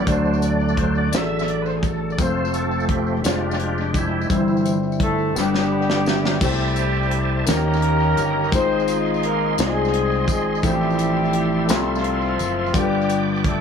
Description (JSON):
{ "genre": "slow gospel", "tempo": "57 BPM (dotted quarters)", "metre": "6/8", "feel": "straight", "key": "C major", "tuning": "A4 = 440 Hz", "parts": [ { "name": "dark concert grand piano", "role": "accompaniment", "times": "0.0-13.6 s", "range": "G2 to B5", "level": "-24 LUFS", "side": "left 5 dB", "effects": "tape echo" }, { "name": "bright tonewheel organ", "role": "sustained chords", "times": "0.0-13.6 s", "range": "D3 to D6", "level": "-25 LUFS", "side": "right 3 dB", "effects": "slow rotary speaker, chorus vibrato" }, { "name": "mellow French horn section", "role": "sustained chords", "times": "0.0-6.4 s", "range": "D3 to F#4", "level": "-35 LUFS", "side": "equal", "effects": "none" }, { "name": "fingered electric bass", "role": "bass", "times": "0.0-13.6 s", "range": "F1 to Eb2", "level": "-24 LUFS", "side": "right 1 dB", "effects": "none" }, { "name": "tight funk drum kit", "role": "drums", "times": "0.1-13.6 s", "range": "crash cymbal, hi-hat, kick drum, snare drum", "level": "-24 LUFS", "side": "equal", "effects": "tape echo" }, { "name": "tambourine", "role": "percussion", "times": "0.1-13.4 s", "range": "none", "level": "-37 LUFS", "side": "left 7 dB", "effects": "tape echo" }, { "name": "mellow horn section", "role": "melody", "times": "5.0-13.6 s", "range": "F3 to C5", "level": "-22 LUFS", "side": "left 1 dB", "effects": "tape echo" } ], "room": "light reverb", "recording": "echo-heavy mix", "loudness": "-18 LUFS", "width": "side -7 dB against mid", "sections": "0.0-6.4 A section; 6.4-13.6 B section", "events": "tonewheel organ solo 0.0-6.4; drum fill 5.4-6.4; grand piano fill 5.4-6.4", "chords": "0.1 D; 2.2 F; 3.2 Fm6; 4.3 C/G; 5.4 G; 6.4 C6; 7.5 Eb7; 8.5 Ab6; 10.6 Fmaj7/A; 12.7 G7" }